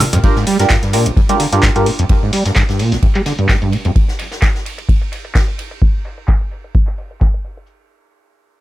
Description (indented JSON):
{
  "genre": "acid house",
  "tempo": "129 BPM",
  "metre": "4/4",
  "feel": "swing 55% on 16ths",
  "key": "G phrygian",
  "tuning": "A4 = 440 Hz",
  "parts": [
    { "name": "overdriven acid bass", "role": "riff", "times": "0.0-3.9 s", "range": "G1 to G3", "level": "-16 LUFS", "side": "equal", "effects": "distortion, ensemble chorus, sidechain pumping, dub echo" },
    { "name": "booming analog drum machine", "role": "drums", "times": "0.0-7.7 s", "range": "handclaps, hi-hat, shaker, snare drum, toms, woodblock", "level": "-20 LUFS", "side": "equal", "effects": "low-pass filter on perc, low-pass filter on toms, low-pass filter on hats, low-pass filter on snare" },
    { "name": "natural country drum kit", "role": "drums", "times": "0.0-5.7 s", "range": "ride cymbal, snare drum", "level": "-29 LUFS", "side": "right 1 dB", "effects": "sidechain pumping on cymbals, high-pass filter on cymbals, high-pass filter on snare, high-pass filter on room" },
    { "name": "band-passed chord stab", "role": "stabs", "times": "0.2-1.9 s", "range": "D4 to Bb4", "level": "-19 LUFS", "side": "right 2 dB", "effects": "phaser, analog chorus, dub echo" },
    { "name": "electronic kick drum", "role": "drums", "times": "0.2-7.3 s", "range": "none", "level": "-14 LUFS", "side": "equal", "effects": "none" }
  ],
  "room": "light reverb",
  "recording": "none",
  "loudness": "-12 LUFS",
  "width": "side -16 dB against mid",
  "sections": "0.2-7.7 A section",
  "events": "drum fill 0.0; filter sweep on drum 0.2-7.7; filter sweep on acid bass 0.2-4.0; filter sweep on synth stab 0.2-2.1",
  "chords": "0.2 Gm7; 7.7 N.C.",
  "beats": "| 0.23 0.70 1.17 1.63 | 2.10 2.56 3.03 3.49 | 3.96 4.42 4.89 5.35 | 5.82 6.28 6.75 7.21"
}